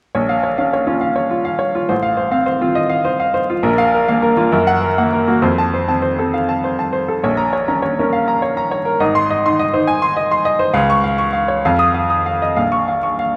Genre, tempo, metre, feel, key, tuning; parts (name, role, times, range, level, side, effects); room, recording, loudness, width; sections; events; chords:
classical, virtuoso piano study; 68 BPM (dotted quarters); 6/8; rubato; Bb minor; A4 = 439 Hz
bright baby grand piano; solo; 0.1-13.4 s; Ab1 to Eb6; -16 LUFS; equal
moderate recital hall reverb, RT60 1.5 s; dark, warm production, vinyl crackle; -17 LUFS; mono
0.1-13.4 A section
0.1 Bbm; 1.9 F7/A; 3.6 Bb5; 4.5 Gb; 5.4 F; 7.2 Bbm; 9.0 Ab; 10.7 Db; 11.6 Ebsus2/F; 12.6 Bbm